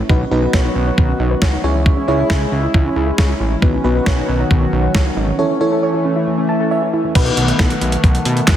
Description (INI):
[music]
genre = synth-pop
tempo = 136 BPM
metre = 4/4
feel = straight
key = B mixolydian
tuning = A4 = 440 Hz
[part]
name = chorused pulse-width pad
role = sustained chords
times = 0.0-8.6 s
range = D#3 to F#5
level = -20 LUFS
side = equal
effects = none
[part]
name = warbly dusty pluck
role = arpeggios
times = 0.0-7.1 s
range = D#3 to C#5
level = -23 LUFS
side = right 2 dB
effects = chorus, tape echo
[part]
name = fat analog bass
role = bass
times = 0.0-8.6 s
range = G#1 to B2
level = -19 LUFS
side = equal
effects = none
[part]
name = mellow FM electric piano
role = accompaniment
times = 0.1-7.7 s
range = B3 to A5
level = -20 LUFS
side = equal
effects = chorus, phaser
[part]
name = clean 12-bit digital drum machine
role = drums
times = 0.1-8.6 s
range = crash cymbal, handclaps, hi-hat, kick drum, snare drum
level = -16 LUFS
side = equal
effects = none
[sound]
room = moderate lush hall reverb, RT60 1.7 s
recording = dense, heavily limited modern master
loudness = -13 LUFS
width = side -11 dB against mid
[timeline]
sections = 0.0-7.2 A section; 7.2-8.6 B section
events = FM electric piano fill 6.3-7.2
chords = 0.1 Badd9; 1.6 C#m; 3.6 Badd9; 5.4 A; 7.2 B7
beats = | 0.09 0.54 0.98 1.42 | 1.86 2.30 2.74 3.18 | 3.62 4.07 4.51 4.95 | 5.39 5.83 6.27 6.71 | 7.15 7.59 8.04 8.48